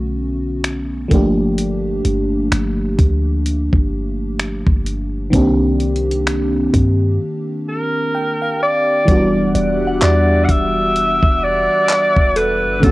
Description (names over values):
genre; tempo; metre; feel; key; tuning
contemporary R&B; 64 BPM; 4/4; swing 58% on 16ths; E minor; A4 = 439 Hz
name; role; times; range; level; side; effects
FM electric piano with soft pad layer; accompaniment; 0.0-12.9 s; D3 to G5; -19 LUFS; equal; chorus
clean 808-style bass; bass; 0.0-12.9 s; E1 to G2; -20 LUFS; equal; none
dusty soul sampler-style drum kit; drums; 0.6-12.9 s; finger snaps, handclaps, hi-hat, kick drum; -17 LUFS; equal; cassette tape
bright alto saxophone; melody; 7.7-12.9 s; A4 to F#5; -16 LUFS; equal; cassette tape
lush unison pad; sustained chords; 9.1-12.9 s; G3 to D6; -24 LUFS; right 1 dB; chorus
soft synth bell; texture; 9.5-12.9 s; A4 to F#5; -23 LUFS; right 1 dB; chorus, tape echo
room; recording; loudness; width
little or no reverb; home recording on cassette; -14 LUFS; side -19 dB against mid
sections
0.0-9.1 A section; 9.1-12.9 B section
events
break 7.2-9.1; FM electric piano fill 7.7-9.1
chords
0.0 Bm9; 1.1 Gm9; 5.3 Cm9; 9.1 Em9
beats
0.64 | 1.58 2.52 3.46 4.39 | 5.33 6.27 7.21 8.14 | 9.08 10.02 10.96 11.89 | 12.83